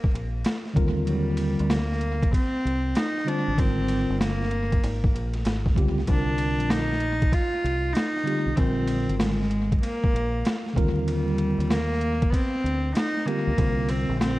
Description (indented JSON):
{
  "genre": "hip hop, jazz-hop",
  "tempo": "96 BPM",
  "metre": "4/4",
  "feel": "swing 66% on 16ths",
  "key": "unclear",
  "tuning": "A4 = 438 Hz",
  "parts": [
    { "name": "rich cello", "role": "melody", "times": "0.0-14.4 s", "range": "F#3 to F4", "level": "-27 LUFS", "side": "equal", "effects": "tape echo" },
    { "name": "boom bap sampler-style drum kit", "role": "drums", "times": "0.0-14.4 s", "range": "hi-hat, kick drum, ride cymbal, snare drum", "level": "-26 LUFS", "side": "equal", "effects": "overdrive" },
    { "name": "deep dub fingered electric bass", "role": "bass", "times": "0.1-14.4 s", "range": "G1 to Eb2", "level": "-27 LUFS", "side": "equal", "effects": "none" },
    { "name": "mellow tine electric piano", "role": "accompaniment", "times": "0.7-14.4 s", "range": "D3 to C5", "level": "-28 LUFS", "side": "equal", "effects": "medium stereo tremolo, tape echo" }
  ],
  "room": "little or no reverb",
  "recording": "echo-heavy mix, vinyl crackle",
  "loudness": "-22 LUFS",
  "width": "side -18 dB against mid",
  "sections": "0.0-14.4 A section",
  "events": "none",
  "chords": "0.0 N.C.; 0.8 Eb6; 3.6 Abmaj9; 6.1 Cm11; 8.6 Bb9; 10.8 Eb6; 13.6 C9sus4",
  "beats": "0.45 | 1.08 1.70 2.33 2.95 | 3.58 4.20 4.83 5.45 | 6.08 6.70 7.33 7.95 | 8.58 9.20 9.83 10.45 | 11.08 11.70 12.33 12.95 | 13.58 14.20"
}